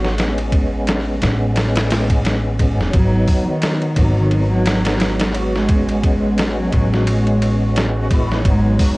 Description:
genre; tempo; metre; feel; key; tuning
trip hop; 87 BPM; 4/4; swing 57% on 16ths; unclear; A4 = 440 Hz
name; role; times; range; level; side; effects
tonewheel organ; accompaniment; 0.0-9.0 s; F#3 to F#4; -22 LUFS; equal; overdrive, chorus vibrato, slow rotary speaker, harmonic tremolo, tape echo
upright bass; bass; 0.0-8.8 s; E1 to A1; -19 LUFS; equal; none
trip hop sampler-style drum kit; drums; 0.0-9.0 s; hi-hat, kick drum, ride cymbal, snare drum; -19 LUFS; equal; none
dark cello; melody; 2.9-8.9 s; D#3 to G#3; -21 LUFS; equal; none
deep dark ambient pad; sustained chords; 4.4-9.0 s; G#3 to C#5; -30 LUFS; right 2 dB; none
backwards swelling texture; texture; 4.0-9.0 s; F#4; -30 LUFS; left 1 dB; built-in reverb
room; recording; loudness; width
light reverb; worn, warbling old tape, cassette tape, warbly pitch drift; -14 LUFS; side -22 dB against mid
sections
0.0-9.0 A section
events
none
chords
0.2 Amaj7; 2.9 G#m7; 5.7 Amaj7; 8.5 G#m7

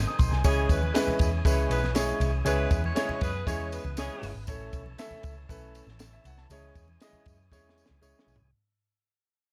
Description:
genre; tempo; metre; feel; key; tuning
uptempo 1960s-style soul; 119 BPM; 4/4; straight; C# minor; A4 = 441 Hz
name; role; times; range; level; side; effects
overdriven tonewheel organ; sustained chords; 0.0-8.5 s; D#3 to A4; -44 LUFS; equal; slow rotary speaker
vintage muted picked electric bass; bass; 0.0-8.5 s; G1 to F#2; -33 LUFS; equal; none
clear concert grand piano; accompaniment; 0.1-8.4 s; G#3 to D#6; -34 LUFS; equal; none
compact cocktail drum kit; drums; 0.2-8.5 s; hi-hat, kick drum, ride cymbal, snare drum, toms; -31 LUFS; equal; none
congas; percussion; 0.2-8.4 s; none; -42 LUFS; equal; none
tambourine; percussion; 0.2-8.4 s; none; -45 LUFS; equal; none
mellow saxophone section; second line; 0.4-4.3 s; E3 to C#5; -36 LUFS; equal; none
room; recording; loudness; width
little or no reverb; none; -27 LUFS; mono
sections
0.0-8.5 A section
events
fade-out 0.0-8.5; drum fill 7.5-8.5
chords
0.5 C#m; 4.5 A; 6.5 C#m

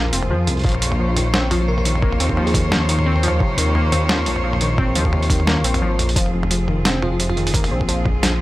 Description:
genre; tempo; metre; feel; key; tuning
half-time drum and bass; 174 BPM; 4/4; swing 57% on 16ths, half-time; F minor; A4 = 440 Hz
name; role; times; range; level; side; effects
rich symphonic cello section; sustained chords; 0.0-8.4 s; F3 to Db5; -26 LUFS; equal; sidechain pumping
warbly dusty pluck; arpeggios; 0.0-8.4 s; F2 to C4; -23 LUFS; left 2 dB; chorus, analog delay
dark detuned saw bass; bass; 0.0-8.4 s; F1 to F2; -20 LUFS; equal; none
boom bap sampler-style drum kit; drums; 0.1-8.3 s; hi-hat, snare drum, toms; -22 LUFS; right 1 dB; overdrive, studio reverb
electronic kick drum; drums; 0.6-8.1 s; none; -21 LUFS; equal; overdrive, studio reverb
bell-like FM electric piano; melody; 1.5-2.7, 7.0-7.5 s; F4 to Bb4; -30 LUFS; right 2 dB; chorus, analog delay
room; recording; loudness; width
little or no reverb; dry, gritty hardware recording; -16 LUFS; side -17 dB against mid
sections
0.0-6.2 A section; 6.2-8.4 A section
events
drop 0.0-6.2, 6.2-8.4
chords
0.0 Fm; 0.6 Bbm; 6.2 Fm

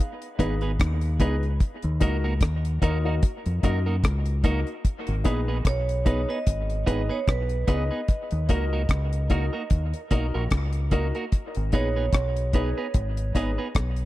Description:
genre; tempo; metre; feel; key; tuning
dub reggae; 74 BPM; 4/4; swing 56% on 16ths; G# minor; A4 = 440 Hz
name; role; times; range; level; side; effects
deep reggae drum kit; drums; 0.2-14.1 s; hi-hat, kick drum, rim click; -23 LUFS; equal; none
clean electric guitar; accompaniment; 0.4-13.7 s; A#3 to B4; -32 LUFS; right 4 dB; spring reverb, dub echo
dark baby grand piano; stabs; 0.4-13.6 s; D#4 to D#5; -34 LUFS; left 4 dB; dub echo
deep dub fingered electric bass; bass; 0.4-14.1 s; G#1 to F#2; -25 LUFS; equal; none
vibraphone with hard mallets; melody; 5.7-12.6 s; B4 to D#5; -33 LUFS; moving between equal and right 7 dB; auto-pan, dub echo
room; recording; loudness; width
small room ambience; dry, close 1970s-style studio recording; -22 LUFS; side -16 dB against mid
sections
0.0-4.8 A section; 4.8-14.1 B section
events
break 0.0-4.8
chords
0.0 G#m; 1.6 D#m; 4.8 G#m; 8.1 D#m; 11.3 G#m

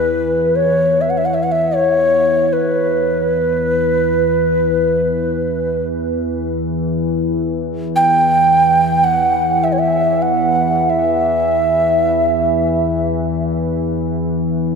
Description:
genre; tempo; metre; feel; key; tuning
world meditative, free-time meditation music; free time; none; none; E kumoi; A4 = 440 Hz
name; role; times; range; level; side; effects
breathy mellow Native American-style cedar flute; melody; 0.0-13.1 s; B4 to G5; -14 LUFS; right 1 dB; ping-pong delay
deep dark ambient pad; drone; 0.0-14.8 s; E2 to E3; -19 LUFS; left 2 dB; chorus, built-in reverb
room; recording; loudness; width
wet huge ambient reverb, RT60 4.2 s; none; -14 LUFS; side -5 dB against mid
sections
0.0-14.8 A section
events
none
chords
none

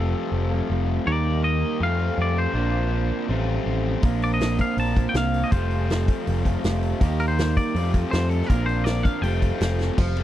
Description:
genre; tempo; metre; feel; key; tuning
indie rock; 161 BPM; 4/4; straight; unclear; A4 = 440 Hz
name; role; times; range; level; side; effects
twangy electric guitar; melody; 0.0-9.8 s; A4 to A5; -29 LUFS; left 2 dB; tape echo
electric guitar through a small old amp; riff; 0.0-10.2 s; A2 to Bb4; -29 LUFS; right 10 dB; wide subtle chorus
fuzz guitar; riff; 0.0-10.2 s; Eb3 to G4; -29 LUFS; left 6 dB; distortion
picked electric bass; bass; 0.0-10.2 s; F1 to F2; -24 LUFS; equal; none
vintage drum kit; drums; 4.0-10.2 s; crash cymbal, hi-hat, kick drum, ride cymbal, snare drum; -23 LUFS; equal; none
room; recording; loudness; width
small room ambience; dry, close 1970s-style studio recording; -20 LUFS; side -12 dB against mid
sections
0.0-10.0 A section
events
drum fill 9.8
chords
0.0 Fadd9; 1.1 Ebmaj7; 1.8 Fadd9; 2.6 Bbadd9; 3.3 Fadd9/A; 4.0 Bbadd9; 5.5 Fadd9; 7.0 Eb; 7.8 Fadd9; 8.5 Bbadd9; 9.2 Fadd9

